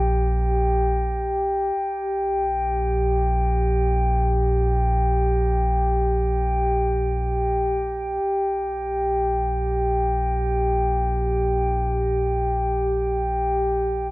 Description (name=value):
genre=ambient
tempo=free time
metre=none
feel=none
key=unclear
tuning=A4 = 441 Hz
part: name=round analog bass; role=bass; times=0.0-14.1 s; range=Bb1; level=-24 LUFS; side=equal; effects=none
part: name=glass harmonica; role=texture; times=0.0-14.1 s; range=G4 to G5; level=-22 LUFS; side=equal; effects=none
room=wet echo chamber reverb, RT60 2.1 s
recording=none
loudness=-20 LUFS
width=side -19 dB against mid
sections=0.0-14.1 A section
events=fade-out on analog synth bass 0.0-14.1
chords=0.0 Gm/Bb